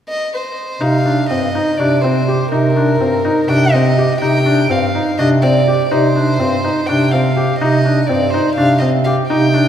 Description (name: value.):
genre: contemporary instrumental, chamber music in an uneven meter.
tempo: 248 BPM (eighths).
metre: 7/8.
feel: straight.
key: C minor.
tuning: A4 = 438 Hz.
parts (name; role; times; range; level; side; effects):
warm violin; melody; 0.1-9.7 s; Bb4 to G5; -18 LUFS; equal; none.
felt-muted upright piano; arpeggios; 0.8-9.7 s; C4 to G4; -16 LUFS; left 1 dB; none.
warm bass clarinet; bass; 0.8-9.7 s; G2 to C3; -16 LUFS; right 1 dB; none.
room: wet concert hall reverb, RT60 2.2 s.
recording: heard from further back in the room.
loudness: -12 LUFS.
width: side -9 dB against mid.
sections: 0.8-9.7 A section.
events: none.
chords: 0.0 N.C.; 0.8 Cm.